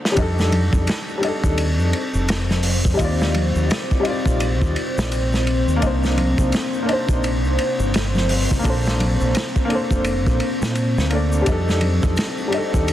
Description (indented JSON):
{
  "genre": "trip hop",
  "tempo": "85 BPM",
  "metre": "4/4",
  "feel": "swing 59% on 16ths",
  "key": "unclear",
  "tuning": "A4 = 440 Hz",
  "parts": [
    { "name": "warm upright piano", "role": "accompaniment", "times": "0.0-12.9 s", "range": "D3 to D5", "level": "-24 LUFS", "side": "left 1 dB", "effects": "tremolo, vintage 12-bit sampler grit, tape echo" },
    { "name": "crunchy breakbeat drum kit", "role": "drums", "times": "0.1-12.9 s", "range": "hi-hat, kick drum, ride cymbal, snare drum", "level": "-22 LUFS", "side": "equal", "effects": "high-pass filter on kick, high-pass filter on cymbals, high-pass filter on hats, high-pass filter on snare, high-pass filter on room" },
    { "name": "deep dark ambient pad", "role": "sustained chords", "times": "1.4-12.9 s", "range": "C4 to C5", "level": "-26 LUFS", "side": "left 1 dB", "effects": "chorus, built-in reverb" },
    { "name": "deep dub fingered electric bass", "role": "bass", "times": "0.2-12.9 s", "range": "F1 to Bb2", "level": "-21 LUFS", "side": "equal", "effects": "none" },
    { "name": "egg shaker and congas", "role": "percussion", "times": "0.2-12.9 s", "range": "none", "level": "-29 LUFS", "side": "left 1 dB", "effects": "none" }
  ],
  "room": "light reverb",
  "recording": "dense, heavily limited modern master, vinyl crackle",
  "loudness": "-17 LUFS",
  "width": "side -12 dB against mid",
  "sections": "0.2-12.9 A section",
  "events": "break 0.0; drum fill 0.0",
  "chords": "0.2 F13; 3.0 Ebmaj9; 5.8 Cm9; 8.6 Bbmaj9; 11.5 F13"
}